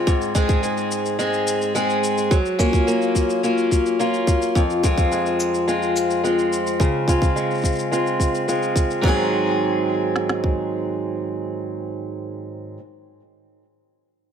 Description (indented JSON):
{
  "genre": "folktronica",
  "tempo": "107 BPM",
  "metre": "4/4",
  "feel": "straight",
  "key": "Ab mixolydian",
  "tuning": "A4 = 439 Hz",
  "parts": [
    { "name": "picked steel-string acoustic guitar", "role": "arpeggios", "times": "0.0-12.8 s", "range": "F2 to Ab4", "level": "-20 LUFS", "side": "equal", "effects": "low-pass filter, ping-pong delay" },
    { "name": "organic electronic drum kit", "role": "drums", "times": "0.1-10.6 s", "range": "kick drum, snare drum", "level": "-20 LUFS", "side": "equal", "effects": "studio ambience" },
    { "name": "shaker", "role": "drums", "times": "0.1-9.0 s", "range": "none", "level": "-32 LUFS", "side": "left 3 dB", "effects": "studio ambience" }
  ],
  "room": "light reverb",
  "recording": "none",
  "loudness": "-18 LUFS",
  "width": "side -8 dB against mid",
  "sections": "0.0-9.0 A section; 9.0-11.3 B section",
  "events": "none",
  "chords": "0.1 Ab; 2.3 Gbmaj7; 4.6 Fm; 6.8 Dbmaj7; 9.0 Ab7"
}